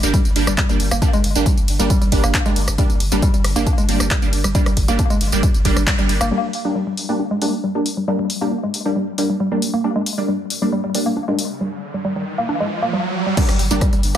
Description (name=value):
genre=driving peak-time techno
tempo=136 BPM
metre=4/4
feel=straight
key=G phrygian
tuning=A4 = 440 Hz
part: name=rave stab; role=stabs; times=0.0-14.2 s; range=G3 to D4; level=-22 LUFS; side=right 1 dB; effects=chorus, built-in reverb, sidechain pumping, digital delay
part: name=saturated sub bass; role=bass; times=0.0-6.3, 13.5-14.2 s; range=G1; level=-21 LUFS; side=equal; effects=overdrive, sidechain pumping, low-pass filter
part: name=punchy analog drum machine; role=drums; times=0.0-14.2 s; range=crash cymbal, handclaps, hi-hat, ride cymbal, rim click, tambourine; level=-24 LUFS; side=left 1 dB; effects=overdrive, sidechain pumping on hats, sidechain pumping on perc, sidechain pumping on cymbals
part: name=woody wave-folded pluck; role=riff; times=0.1-14.2 s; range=G3 to D4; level=-23 LUFS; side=equal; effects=chorus, sidechain pumping, ping-pong delay
part: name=electronic kick drum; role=drums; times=0.1-6.0, 13.4-13.9 s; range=none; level=-18 LUFS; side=equal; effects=none
part: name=riser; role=sound effects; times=11.6-13.4 s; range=none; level=-26 LUFS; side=right 3 dB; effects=none
room=light reverb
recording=none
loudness=-16 LUFS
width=side -10 dB against mid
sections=0.0-6.3 A section; 6.3-13.4 B section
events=drop 0.0-6.3; band accent 5.9; riser 11.6-13.4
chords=0.0 Gm